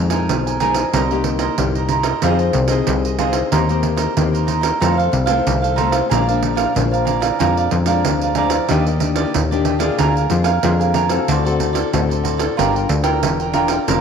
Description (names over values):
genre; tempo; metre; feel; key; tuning
samba and choro; 93 BPM; 4/4; straight; unclear; A4 = 440 Hz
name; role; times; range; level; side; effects
nylon-string guitar; accompaniment; 0.0-14.0 s; F2 to Bb4; -22 LUFS; left 9 dB; none
plucky analog bass; bass; 0.0-14.0 s; Fb1 to F2; -19 LUFS; left 2 dB; none
cavaquinho; accompaniment; 0.1-14.0 s; D4 to Ab5; -21 LUFS; right 6 dB; none
pandeiro; percussion; 0.1-14.0 s; none; -22 LUFS; right 7 dB; none
room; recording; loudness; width
wet echo chamber reverb, RT60 1.7 s, small room ambience; 1960s-style stereo with parts hard left and right; -15 LUFS; side -6 dB against mid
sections
0.0-14.0 A section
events
none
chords
0.0 Bb7sus4; 0.9 Cm7; 2.2 Fm7; 3.5 Cm7/Eb; 4.8 F7; 6.1 Bb7; 8.7 Ebmaj7; 10.0 Bb7/D; 11.3 D7; 12.6 Gm7